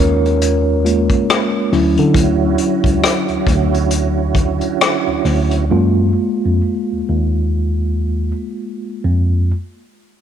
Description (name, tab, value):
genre	R&B, neo-soul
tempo	59-69 BPM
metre	4/4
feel	swing 61% on 16ths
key	unclear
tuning	A4 = 444 Hz
part	mellow tine electric piano	accompaniment	0.0-9.6 s	F#3 to C#5	-18 LUFS	equal	medium stereo tremolo
part	tine electric piano	bass	0.0-9.5 s	C#2 to D3	-16 LUFS	equal	fast stereo tremolo, transformer saturation
part	unplugged drum kit	drums	0.3-5.7 s	hi-hat, kick drum, rim click	-18 LUFS	left 2 dB	none
part	tonewheel organ	sustained chords	2.1-5.7 s	D3 to F#4	-20 LUFS	right 13 dB	slow rotary speaker, chorus vibrato
room	light reverb, small room ambience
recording	1960s-style stereo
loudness	-14 LUFS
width	side -9 dB against mid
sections	0.0-9.5 A section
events	tine electric piano solo 0.0-9.5; slowing down 2.1-9.5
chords	0.0 F#maj9 (rootless); 1.7 Dmaj9; 5.7 F#maj9 (rootless)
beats	0.40 1.27 | 2.14 3.01 3.89 4.78 | 5.69 6.61 7.56 8.53